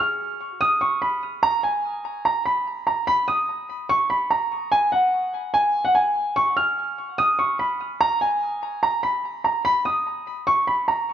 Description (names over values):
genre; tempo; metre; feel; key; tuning
hip hop; 146 BPM; 4/4; half-time; Eb minor; A4 = 438 Hz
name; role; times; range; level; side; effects
warm concert grand piano; solo; 0.0-11.1 s; Gb5 to F6; -20 LUFS; right 1 dB; low-pass filter, ping-pong delay
room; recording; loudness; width
moderate scoring stage reverb, RT60 1.8 s, small room reverb; none; -20 LUFS; side -10 dB against mid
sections
0.0-11.1 A section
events
none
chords
none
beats
0.20 0.61 1.02 | 1.43 1.84 2.25 2.66 | 3.07 3.48 3.89 4.30 | 4.72 5.13 5.54 5.95 | 6.36 6.77 7.18 7.59 | 8.00 8.41 8.83 9.24 | 9.65 10.06 10.47 10.88